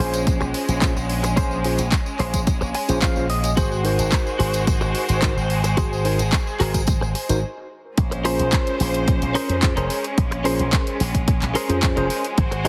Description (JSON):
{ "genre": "nu-disco, nu disco", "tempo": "109 BPM", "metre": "4/4", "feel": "straight", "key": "unclear", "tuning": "A4 = 441 Hz", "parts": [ { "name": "mellow tine electric piano", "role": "accompaniment", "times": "0.0-12.7 s", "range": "Db4 to C5", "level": "-29 LUFS", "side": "equal", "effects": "sidechain pumping, tape echo" }, { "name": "warm studio violin section", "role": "sustained chords", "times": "0.0-12.7 s", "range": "Ab3 to C5", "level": "-30 LUFS", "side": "equal", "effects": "sidechain pumping" }, { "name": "direct-recorded clean electric guitar", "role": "riff", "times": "0.0-12.7 s", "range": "Db4 to Ab5", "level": "-29 LUFS", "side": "equal", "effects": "analog chorus, tape echo" }, { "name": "slap bass with an envelope filter", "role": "bass", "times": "0.0-12.7 s", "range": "F1 to F2", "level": "-26 LUFS", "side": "equal", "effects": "sidechain pumping" }, { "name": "house drum kit", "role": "drums", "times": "0.1-12.7 s", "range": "handclaps, hi-hat", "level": "-30 LUFS", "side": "equal", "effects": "overdrive" }, { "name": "tambourine", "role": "percussion", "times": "0.1-7.4 s", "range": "none", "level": "-36 LUFS", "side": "equal", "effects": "none" }, { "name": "electronic kick drum", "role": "drums", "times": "0.3-12.5 s", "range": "none", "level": "-23 LUFS", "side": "equal", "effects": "overdrive" } ], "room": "light reverb, digital ambience", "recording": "heavily compressed radio sound", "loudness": "-21 LUFS", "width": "mono", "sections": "0.0-8.0 A section; 8.0-12.7 B section", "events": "filter sweep on tine electric piano 0.0-8.0; clean electric guitar fill 2.5-3.6; stop 7.4-8.0; drop 8.0-12.7", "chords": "0.0 Bbm9; 3.6 Ab7; 8.0 Bbm9" }